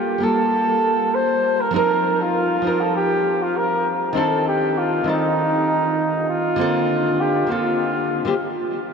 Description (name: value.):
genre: chillout.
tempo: 99 BPM.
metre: 4/4.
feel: swing 54% on 16ths.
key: C dorian.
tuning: A4 = 444 Hz.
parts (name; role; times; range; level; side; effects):
warm flugelhorn; melody; 0.0-8.7 s; Eb4 to C5; -19 LUFS; equal; tape echo.
nylon-string guitar; accompaniment; 0.0-8.3 s; D3 to D5; -22 LUFS; moving between left 3 dB and right 4 dB; auto-pan, tape echo.
room: wet huge ambient reverb, RT60 8.6 s.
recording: dreamy mix soaked in reverb.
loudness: -17 LUFS.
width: side -6 dB against mid.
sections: 0.0-8.9 A section.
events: none.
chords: 0.0 Gm9; 1.7 F7sus4; 4.2 Cm69; 6.6 Bbmaj9.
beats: 0.52 1.12 | 1.73 2.34 2.94 3.55 | 4.16 4.76 5.37 5.97 | 6.58 7.19 7.79 8.40.